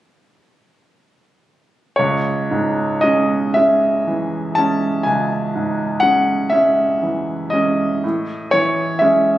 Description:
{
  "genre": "classical, romantic nocturne for solo piano",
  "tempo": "38-42 BPM (dotted quarters)",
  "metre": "12/8",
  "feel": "rubato",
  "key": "C# minor",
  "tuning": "A4 = 440 Hz",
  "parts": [
    { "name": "clear concert grand piano", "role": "solo", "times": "2.0-9.4 s", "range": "C#2 to A5", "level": "-15 LUFS", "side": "equal", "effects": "none" }
  ],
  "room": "moderate recital hall reverb, RT60 1.4 s",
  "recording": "recorded on a phone in the room, studio ambience, compression",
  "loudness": "-15 LUFS",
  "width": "side -14 dB against mid",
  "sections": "2.0-9.4 A section",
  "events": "none",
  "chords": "2.0 C#m; 8.0 Amaj7",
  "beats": "| 1.99 3.54 5.07 6.53 | 8.03"
}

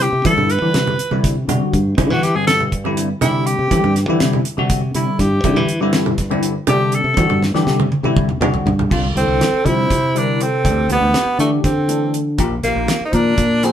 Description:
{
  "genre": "electric jazz fusion",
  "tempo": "242 BPM (eighths)",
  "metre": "7/8",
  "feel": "straight",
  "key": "C lydian, C mixolydian from 8.9 s",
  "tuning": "A4 = 440 Hz",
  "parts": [
    { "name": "bright tenor saxophone", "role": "melody", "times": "0.0-13.7 s", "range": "A3 to B4", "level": "-18 LUFS", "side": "equal", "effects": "none" },
    { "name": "bell-like tine electric piano", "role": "accompaniment", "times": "0.0-13.7 s", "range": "D3 to Bb4", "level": "-20 LUFS", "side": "left 2 dB", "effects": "phaser" },
    { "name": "modern bright fingered electric bass", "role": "bass", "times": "0.0-13.7 s", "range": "Bb1 to E3", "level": "-19 LUFS", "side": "equal", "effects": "none" },
    { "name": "damped 70s drum kit", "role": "drums", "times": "0.0-13.7 s", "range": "crash cymbal, hi-hat, kick drum, snare drum, toms", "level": "-21 LUFS", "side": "equal", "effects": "none" },
    { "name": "congas", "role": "percussion", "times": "0.3-8.9 s", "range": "none", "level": "-23 LUFS", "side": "right 4 dB", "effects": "none" },
    { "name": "breathy mellow jazz flute", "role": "second line", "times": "9.2-13.7 s", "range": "F#4 to C5", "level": "-24 LUFS", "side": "right 3 dB", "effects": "none" }
  ],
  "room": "moderate studio reverb, RT60 0.7 s",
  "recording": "band playing live in one room",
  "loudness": "-14 LUFS",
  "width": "side -10 dB against mid",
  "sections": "0.0-8.9 A section; 8.9-13.7 B section",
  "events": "tenor saxophone solo 0.0-8.9; drum fill 7.4-8.9",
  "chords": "0.0 C; 8.9 Csus24; 10.7 D13sus4; 12.4 Bbsus4",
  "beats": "0.01 | 0.26 0.50 0.75 1.00 1.24 1.49 1.74 | 1.99 2.23 2.48 2.73 2.97 3.22 3.47 | 3.72 3.96 4.21 4.46 4.71 4.95 5.20 | 5.45 5.69 5.94 6.19 6.44 6.68 6.93 | 7.18 7.43 7.67 7.92 8.17 8.42 8.66 | 8.91 9.16 9.41 9.66 9.91 10.15 10.40 | 10.65 10.90 11.15 11.39 11.64 11.89 12.14 | 12.39 12.64 12.88 13.13 13.38 13.63"
}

